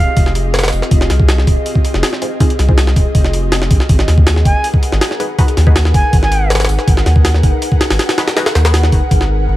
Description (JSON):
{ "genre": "drum and bass, jungle", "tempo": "161 BPM", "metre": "4/4", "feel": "straight", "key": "unclear", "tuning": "A4 = 440 Hz", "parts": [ { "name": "bright reedy concert flute", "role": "melody", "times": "0.0-0.3, 4.5-6.5 s", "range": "F5 to Ab5", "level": "-23 LUFS", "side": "right 2 dB", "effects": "dub echo" }, { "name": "soft dub sub bass", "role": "bass", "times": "0.0-9.6 s", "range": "Eb1 to Eb2", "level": "-13 LUFS", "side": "equal", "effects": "none" }, { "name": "jungle sampler-style drum kit", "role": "drums", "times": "0.2-9.3 s", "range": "hi-hat, kick drum, snare drum", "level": "-12 LUFS", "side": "equal", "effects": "none" }, { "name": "filtered dub chord stab", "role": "stabs", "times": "2.2-2.8, 5.2-5.8, 8.2-8.7 s", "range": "C4 to Cb5", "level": "-23 LUFS", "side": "left 1 dB", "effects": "phaser, dub echo" } ], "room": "little or no reverb", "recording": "vinyl crackle", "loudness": "-10 LUFS", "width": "side -15 dB against mid", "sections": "0.0-9.6 A section", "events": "none", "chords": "0.0 Fm7; 3.9 Abm7" }